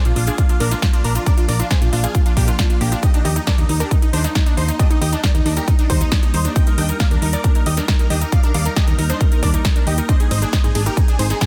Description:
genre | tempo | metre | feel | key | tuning
uplifting trance | 136 BPM | 4/4 | straight | Eb major | A4 = 440 Hz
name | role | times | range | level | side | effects
shimmering ambient pad | sustained chords | 0.1-11.5 s | F3 to Eb4 | -33 LUFS | equal | none
big supersaw lead | melody | 0.1-11.5 s | Bb3 to G5 | -28 LUFS | equal | phaser, sidechain pumping, tape echo
plucky unison lead | second line | 0.1-11.5 s | Eb4 to G5 | -33 LUFS | equal | sidechain pumping
unison pluck | arpeggios | 0.1-11.5 s | D4 to Eb4 | -31 LUFS | equal | vintage 12-bit sampler grit, sidechain pumping, tape echo
solid FM bass | bass | 0.1-11.3 s | Ab1 to Eb2 | -22 LUFS | equal | sidechain pumping
big-room dance drum kit | drums | 0.1-11.5 s | hi-hat, ride cymbal, shaker, snare drum | -27 LUFS | equal | sidechain pumping on hats, sidechain pumping on perc, sidechain pumping on cymbals
electronic kick drum | drums | 0.4-11.5 s | none | -18 LUFS | equal | none
room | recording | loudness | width
digital ambience | dense, heavily limited modern master | -17 LUFS | mono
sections
0.0-11.5 A section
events
none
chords
0.0 Bb; 3.0 Eb; 10.1 Ab

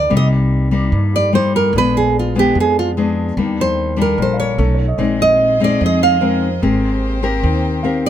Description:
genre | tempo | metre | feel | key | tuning
bossa nova | 148 BPM | 4/4 | straight | unclear | A4 = 445 Hz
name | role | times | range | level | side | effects
nylon-string guitar | melody | 0.0-8.1 s | F4 to F5 | -16 LUFS | right 3 dB | none
nylon-string guitar | accompaniment | 0.0-8.1 s | G2 to Bb4 | -17 LUFS | left 4 dB | none
warm concert grand piano | accompaniment | 0.0-8.1 s | G4 to F5 | -29 LUFS | right 1 dB | none
upright bass | bass | 0.0-8.1 s | Ab1 to G2 | -20 LUFS | right 1 dB | none
warm chamber string section | sustained chords | 5.0-8.1 s | Bb3 to Eb5 | -27 LUFS | equal | none
room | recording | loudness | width
moderate booth ambience, RT60 0.2 s | none | -13 LUFS | side -10 dB against mid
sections
0.0-8.1 A section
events
nylon-string guitar solo 0.0-8.1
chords
0.1 Cm7; 1.7 Bb7b9; 3.4 Ebmaj7; 4.6 B9; 5.0 Bb9sus4; 6.6 Abmaj9

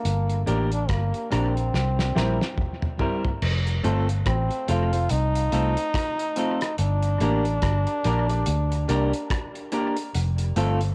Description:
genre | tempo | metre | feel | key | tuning
roots reggae | 71 BPM | 4/4 | swing 59% on 16ths | unclear | A4 = 440 Hz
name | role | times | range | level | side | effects
bright trombone | melody | 0.0-9.7 s | Bb3 to F4 | -31 LUFS | equal | tape echo
vintage muted fingered electric bass | bass | 0.1-10.9 s | F1 to D2 | -26 LUFS | equal | none
cloth-damped thuddy drum kit | drums | 0.1-10.9 s | crash cymbal, hi-hat, kick drum, rim click, snare drum, toms | -32 LUFS | equal | analog delay
semi-hollow electric guitar | accompaniment | 0.5-10.8 s | G3 to Bb4 | -32 LUFS | equal | cassette tape, tape echo
clear grand piano | stabs | 0.5-10.8 s | C4 to F5 | -36 LUFS | equal | cassette tape
room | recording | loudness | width
light reverb | home recording on cassette | -24 LUFS | mono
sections
0.0-3.4 A section; 3.4-10.9 B section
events
drum fill 1.7-3.4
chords
0.0 Gm; 1.7 C7; 3.4 F; 6.8 Gm; 10.1 F

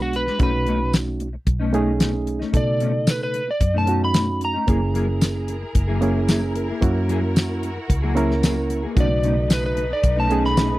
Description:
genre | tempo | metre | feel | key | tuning
straight-eighth soul blues | 112 BPM | 4/4 | straight | unclear | A4 = 440 Hz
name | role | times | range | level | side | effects
electric slide guitar | melody | 0.0-10.8 s | F#4 to B5 | -24 LUFS | equal | none
barky reed electric piano | accompaniment | 0.0-10.8 s | C#3 to A#4 | -24 LUFS | right 3 dB | overdrive
mellow electric guitar | stabs | 0.0-10.7 s | B2 to G#4 | -26 LUFS | left 4 dB | ensemble chorus
vintage muted fingered electric bass | bass | 0.0-10.8 s | F#1 to B2 | -24 LUFS | equal | none
damped 70s drum kit | drums | 0.1-10.7 s | hi-hat, kick drum, snare drum, tambourine | -20 LUFS | equal | none
warm symphonic string section | sustained chords | 4.7-10.8 s | A3 to B4 | -33 LUFS | left 1 dB | none
room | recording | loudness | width
little or no reverb | dry, close 1970s-style studio recording | -18 LUFS | side -17 dB against mid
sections
0.0-10.8 A section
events
electric slide guitar solo 0.0-10.8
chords
0.4 B9; 4.7 F#9; 9.0 B9

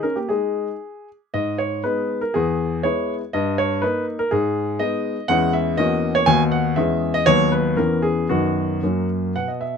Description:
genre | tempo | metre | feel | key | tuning
classical-period piano sonatina | 112-124 BPM | 2/4 | rubato | G# minor, B major from 5.3 s | A4 = 440 Hz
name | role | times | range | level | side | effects
clear baby grand piano | solo | 0.0-9.8 s | D#2 to G#5 | -18 LUFS | left 1 dB | none
room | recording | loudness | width
light reverb | close, detailed microphones | -18 LUFS | side -6 dB against mid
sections
0.0-1.3 A section; 1.3-9.4 B section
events
none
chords
0.3 G#5; 1.3 G#m; 2.3 E; 3.3 D#/G; 4.3 G#m; 5.3 C#m/E; 5.8 F#7/E; 6.3 B/D#; 6.8 C#m/E; 7.3 B/D#; 7.8 C#m7/E; 8.3 B/F#; 8.8 F#

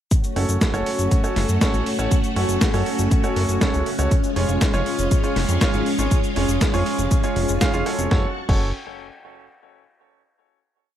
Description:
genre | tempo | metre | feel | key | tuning
italo disco | 120 BPM | 4/4 | straight | F# harmonic minor | A4 = 440 Hz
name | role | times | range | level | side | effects
string machine, full ensemble | sustained chords | 0.1-8.3 s | G#3 to C#6 | -25 LUFS | equal | ensemble chorus
dusty soul sampler-style drum kit | drums | 0.1-8.6 s | cabasa, crash cymbal, hi-hat, snare drum | -26 LUFS | equal | overdrive, small room ambience
electronic kick drum | drums | 0.1-8.6 s | none | -20 LUFS | equal | small room ambience
clear grand piano | stabs | 0.4-8.7 s | C#4 to E#5 | -26 LUFS | right 3 dB | ping-pong delay
chorused synth bass | bass | 0.4-8.7 s | E#1 to F#2 | -23 LUFS | equal | none
room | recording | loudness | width
light reverb | none | -18 LUFS | side -11 dB against mid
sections
0.1-8.1 chorus; 8.1-10.1 final chord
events
none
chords
0.1 F#m; 4.1 C#/E#; 8.1 F#m

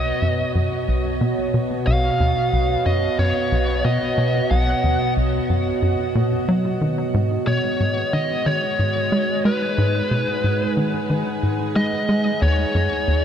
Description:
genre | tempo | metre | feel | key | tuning
ambient, sequencer-driven space music | 91 BPM | 4/4 | straight | unclear | A4 = 443 Hz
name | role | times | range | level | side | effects
biting lead guitar | melody | 0.0-13.2 s | Cb5 to F#5 | -24 LUFS | left 1 dB | overdrive, tape echo
evolving wavetable pad | sustained chords | 0.0-13.2 s | B2 to Gb5 | -23 LUFS | right 1 dB | chorus, built-in reverb
tight sequencer bass | riff | 0.0-13.2 s | B1 to Ab3 | -21 LUFS | equal | tape echo
room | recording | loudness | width
wet huge ambient reverb, RT60 7.6 s | none | -18 LUFS | side -8 dB against mid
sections
0.0-13.2 A section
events
filter sweep on analog synth bass 0.0-13.2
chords
0.0 Badd9; 7.1 Abm7; 12.4 Ebm

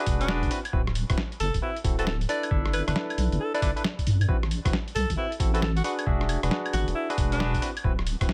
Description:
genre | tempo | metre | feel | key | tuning
UK garage, two-step garage | 135 BPM | 4/4 | swing 64% on 16ths | A dorian | A4 = 440 Hz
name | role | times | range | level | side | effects
barky tine electric piano | stabs | 0.0-8.3 s | C4 to E5 | -34 LUFS | equal | dub echo
deep soft wobble bass | bass | 0.1-8.3 s | D1 to G2 | -29 LUFS | equal | chorus
boom bap sampler-style drum kit | drums | 0.1-8.3 s | claves, hi-hat, rim click, snare drum | -35 LUFS | equal | none
electronic kick drum | drums | 0.1-8.3 s | none | -30 LUFS | equal | none
clear alto saxophone | melody | 0.2-7.7 s | D4 to D5 | -34 LUFS | equal | dub echo
room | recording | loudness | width
little or no reverb | none | -26 LUFS | mono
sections
0.0-8.3 A section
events
none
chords
0.0 E9; 0.5 D13; 2.3 G69; 4.3 Am69; 5.8 E9; 7.6 D13

